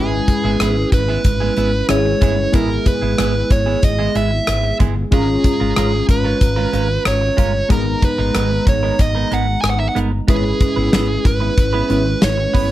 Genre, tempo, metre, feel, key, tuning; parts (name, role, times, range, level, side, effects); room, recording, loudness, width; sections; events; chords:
1980s-style pop; 93 BPM; 4/4; straight; A4 = 439 Hz
dark smooth lead guitar; melody; 0.0-12.7 s; G#4 to G#5; -20 LUFS; right 2 dB; overdrive, slapback echo
warm analog keys; accompaniment; 0.0-12.7 s; G#3 to A#5; -21 LUFS; left 2 dB; chorus
clean electric guitar; riff; 0.0-12.7 s; G#3 to B4; -24 LUFS; right 7 dB; wide subtle chorus, slapback echo
fretless electric bass; bass; 0.0-12.7 s; G1 to G#1; -20 LUFS; equal; ensemble chorus
gated 80s drum kit; drums; 0.3-12.7 s; hi-hat, kick drum, rim click, snare drum; -18 LUFS; equal
little or no reverb; -14 LUFS; side -14 dB against mid
0.0-12.7 A section
0.0 C#m7/G#; 2.5 E/G#; 5.1 A#m7/G#; 7.7 G#madd9; 10.3 C#m7/G#